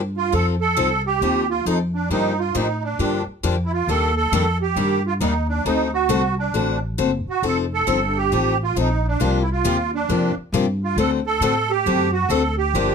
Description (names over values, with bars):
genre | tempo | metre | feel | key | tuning
acoustic string swing (jazz manouche) | 135 BPM | 4/4 | swing 63% on 8ths | unclear | A4 = 440 Hz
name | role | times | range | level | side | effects
upright bass | bass | 0.0-12.9 s | F1 to A2 | -23 LUFS | equal | none
musette accordion | melody | 0.2-12.9 s | D4 to A4 | -21 LUFS | right 6 dB | none
picked steel-string acoustic guitar | accompaniment | 0.3-12.9 s | C3 to A4 | -22 LUFS | left 7 dB | none
room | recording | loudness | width
light reverb | close, detailed microphones | -18 LUFS | side -6 dB against mid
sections
0.3-12.9 A section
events
none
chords
0.3 F7; 2.1 Gm7; 3.9 Ebmaj7; 5.7 D7; 7.4 F7; 9.2 C7sus4; 11.0 D7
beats
| 0.33 0.77 1.22 1.66 | 2.10 2.55 2.99 3.44 | 3.88 4.33 4.77 5.21 | 5.66 6.10 6.54 6.99 | 7.43 7.87 8.32 8.76 | 9.20 9.65 10.09 10.53 | 10.97 11.42 11.86 12.30 | 12.74